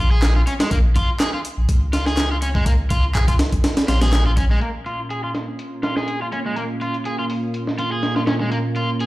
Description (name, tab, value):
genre	breakbeat, breaks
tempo	123 BPM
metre	4/4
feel	swing 54% on 16ths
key	Bb minor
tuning	A4 = 437 Hz
part	crunchy overdriven guitar	riff	0.0-9.1 s	Ab3 to Ab4	-25 LUFS	equal	tube saturation, low-pass filter, dub echo
part	saturated sub bass	bass	0.0-4.6 s	Bb1 to Db2	-18 LUFS	equal	tube saturation
part	breakbeat sampler-style drum kit	drums	0.2-9.1 s	hi-hat, kick drum, snare drum	-21 LUFS	equal	low-pass filter on hats, low-pass filter on snare, low-pass filter on kick
part	electronic handclaps	drums	0.2-4.2 s	none	-28 LUFS	equal	overdrive, low-pass filter on snare
part	lush unison pad	sustained chords	4.6-9.1 s	Bb2 to F4	-25 LUFS	right 1 dB	chorus, sidechain pumping
room	light reverb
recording	played on a big sound system in a bare room, large studio reverb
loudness	-18 LUFS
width	side -18 dB against mid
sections	0.0-4.6 A section; 4.6-9.1 B section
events	none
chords	0.0 Bbm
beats	0.23 | 0.71 1.20 1.69 2.18 | 2.67 3.15 3.64 4.13 | 4.62 5.11 5.59 6.08 | 6.57 7.06 7.54 8.03 | 8.52 9.01